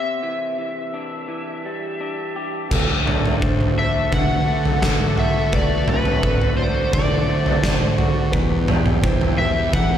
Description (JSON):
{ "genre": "post-rock", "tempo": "85 BPM", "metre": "4/4", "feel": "straight", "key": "unclear", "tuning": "A4 = 440 Hz", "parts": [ { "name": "overdriven slide guitar", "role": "melody", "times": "0.0-10.0 s", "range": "B4 to F#5", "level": "-24 LUFS", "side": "left 1 dB", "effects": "analog chorus, diffuse ambient delay" }, { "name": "electric guitar through a small old amp", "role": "arpeggios", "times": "0.0-10.0 s", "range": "E2 to G4", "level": "-28 LUFS", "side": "left 2 dB", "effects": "diffuse ambient delay" }, { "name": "rich symphonic string section", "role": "sustained chords", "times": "2.7-10.0 s", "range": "B2 to A4", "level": "-30 LUFS", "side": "left 1 dB", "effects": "none" }, { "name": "felt-muted upright piano", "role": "arpeggios", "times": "2.7-10.0 s", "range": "C4 to D5", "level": "-30 LUFS", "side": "right 1 dB", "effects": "diffuse ambient delay" }, { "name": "fuzz fingered electric bass", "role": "bass", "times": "2.7-10.0 s", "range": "D2 to E3", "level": "-23 LUFS", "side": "equal", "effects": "overdrive" }, { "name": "oversized low-tuned drum kit", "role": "drums", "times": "2.7-9.9 s", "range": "crash cymbal, kick drum, snare drum, toms", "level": "-19 LUFS", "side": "right 1 dB", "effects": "none" } ], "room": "moderate lush hall reverb, RT60 2.3 s", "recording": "dreamy mix soaked in reverb", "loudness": "-18 LUFS", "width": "side -10 dB against mid", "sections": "0.0-2.7 A section; 2.7-10.0 B section", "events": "none", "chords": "0.0 Cadd9; 2.7 D; 8.3 Em", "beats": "0.57 1.29 2.00 | 2.70 3.41 4.12 4.82 | 5.53 6.23 6.93 7.63 | 8.33 9.04 9.74" }